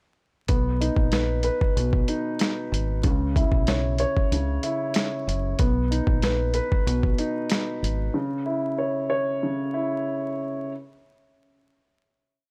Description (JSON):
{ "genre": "hip hop, boom-bap hip-hop", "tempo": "94 BPM", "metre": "4/4", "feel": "swing 54% on 16ths", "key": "C# dorian", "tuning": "A4 = 439 Hz", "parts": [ { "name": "dark grand piano", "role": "accompaniment", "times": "0.5-10.7 s", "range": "B2 to C#5", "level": "-28 LUFS", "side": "equal", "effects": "high-pass filter, low-pass filter" }, { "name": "deep dub fingered electric bass", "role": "bass", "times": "0.5-8.1 s", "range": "F#1 to C#2", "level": "-28 LUFS", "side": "equal", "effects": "none" }, { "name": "dusty soul sampler-style drum kit", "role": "drums", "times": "0.5-8.0 s", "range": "hi-hat, kick drum, snare drum", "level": "-26 LUFS", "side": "equal", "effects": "none" } ], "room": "little or no reverb", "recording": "dry, gritty hardware recording, vinyl crackle", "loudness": "-25 LUFS", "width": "mono", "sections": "0.5-10.7 verse", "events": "none", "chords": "0.5 Bmaj7; 3.0 C#m7; 5.6 Bmaj7; 8.1 C#m", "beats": "| 0.49 1.12 1.76 2.40 | 3.04 3.68 4.32 4.96 | 5.59 6.23 6.87 7.51 | 8.15 8.78 9.42 10.06" }